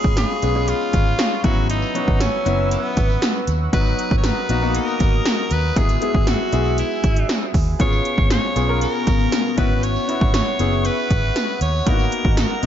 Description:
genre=1980s-style pop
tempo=118 BPM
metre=4/4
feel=straight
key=unclear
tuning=A4 = 440 Hz
part: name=raspy tenor saxophone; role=melody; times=0.0-12.7 s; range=B3 to C#5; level=-25 LUFS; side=equal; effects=digital delay
part: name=clear baby grand piano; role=accompaniment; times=0.0-12.7 s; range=F#3 to A#4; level=-24 LUFS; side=left 4 dB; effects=none
part: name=chorused pulse-width pad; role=sustained chords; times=0.0-12.7 s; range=B3 to E6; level=-28 LUFS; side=equal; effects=none
part: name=vintage muted fingered electric bass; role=bass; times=0.0-12.7 s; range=F#1 to D#2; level=-22 LUFS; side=equal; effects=none
part: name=80s electronic pad drums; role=drums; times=0.0-12.7 s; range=hi-hat, kick drum, snare drum, tambourine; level=-20 LUFS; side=equal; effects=none
part: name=tambourine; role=percussion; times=0.2-12.7 s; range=none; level=-40 LUFS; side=right 10 dB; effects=none
room=light reverb, studio reverb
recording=dark, warm production, nothing above 7.6 kHz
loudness=-17 LUFS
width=side -10 dB against mid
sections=0.0-12.7 A section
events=none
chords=0.0 C#7/G#; 1.4 F#7sus4; 3.7 Bmaj7/G#; 5.8 E/G#; 7.8 C#7/G#; 9.6 F#7sus4; 11.9 Bmaj7/G#

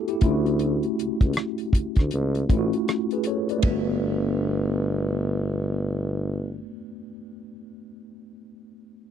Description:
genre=R&B, neo-soul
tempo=79 BPM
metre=4/4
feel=swing 62% on 16ths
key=G lydian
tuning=A4 = 438 Hz
part: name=mellow tine electric piano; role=accompaniment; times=0.0-9.1 s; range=A3 to D5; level=-27 LUFS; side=equal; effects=medium stereo tremolo
part: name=damped 70s drum kit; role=drums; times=0.1-3.9 s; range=hi-hat, kick drum, ride cymbal, rim click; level=-21 LUFS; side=equal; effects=none
part: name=warm tuba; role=bass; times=0.2-6.6 s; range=G1 to D2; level=-26 LUFS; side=equal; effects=none
room=little or no reverb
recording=dry, close 1970s-style studio recording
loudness=-22 LUFS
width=side -9 dB against mid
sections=0.0-3.6 A section; 3.6-6.7 B section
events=none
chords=0.2 Dmaj9; 3.6 Gmaj9

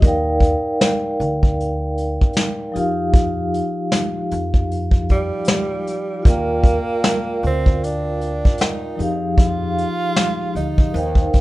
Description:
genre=lo-fi hip hop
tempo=77 BPM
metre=4/4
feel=swing 60% on 16ths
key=Eb major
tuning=A4 = 440 Hz
part: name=vibraphone with medium mallets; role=accompaniment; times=0.0-11.4 s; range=F3 to G5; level=-22 LUFS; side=equal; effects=plate reverb
part: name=upright bass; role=bass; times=0.0-11.4 s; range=D2 to G2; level=-24 LUFS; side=equal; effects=none
part: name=vintage brush drum kit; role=drums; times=0.0-11.4 s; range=hi-hat, kick drum, snare drum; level=-16 LUFS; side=equal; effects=vintage 12-bit sampler grit
part: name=breathy tenor saxophone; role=melody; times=5.1-11.4 s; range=G3 to F4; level=-25 LUFS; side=right 3 dB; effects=tape echo, plate reverb
room=moderate studio reverb, RT60 0.5 s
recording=rough home demo mix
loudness=-17 LUFS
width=side -18 dB against mid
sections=0.0-11.4 A section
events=none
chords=0.0 Ebmaj9; 2.8 Ebadd9/F; 6.3 Ebmaj9; 9.0 Fm7

